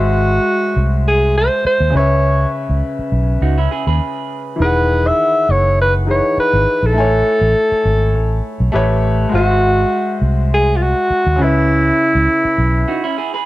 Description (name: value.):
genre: soul.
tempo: 102 BPM.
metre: 4/4.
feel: swing 54% on 16ths.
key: unclear.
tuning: A4 = 437 Hz.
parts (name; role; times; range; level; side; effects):
breathy alto saxophone; melody; 0.0-13.5 s; E4 to E5; -15 LUFS; equal; none.
clear concert grand piano; accompaniment; 0.0-12.9 s; C#3 to G#5; -20 LUFS; left 2 dB; none.
vintage muted fingered electric bass; bass; 0.0-12.8 s; E1 to D#2; -16 LUFS; equal; none.
electric guitar through a small old amp; riff; 3.4-4.6, 12.9-13.5 s; C#4 to B4; -21 LUFS; right 6 dB; none.
room: light reverb, small room ambience.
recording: none.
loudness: -12 LUFS.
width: side -17 dB against mid.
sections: 0.0-13.5 A section.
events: stop 12.9-13.5.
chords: 0.0 G#7b13; 1.9 C#m7; 4.6 Emaj9; 7.0 Amaj7; 8.7 A9; 9.3 G#7b13; 11.4 C#m7.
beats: 0.46 1.05 1.65 | 2.24 2.83 3.42 4.01 | 4.60 5.19 5.78 6.37 | 6.96 7.56 8.15 8.74 | 9.33 9.92 10.51 11.10 | 11.69 12.29 12.88.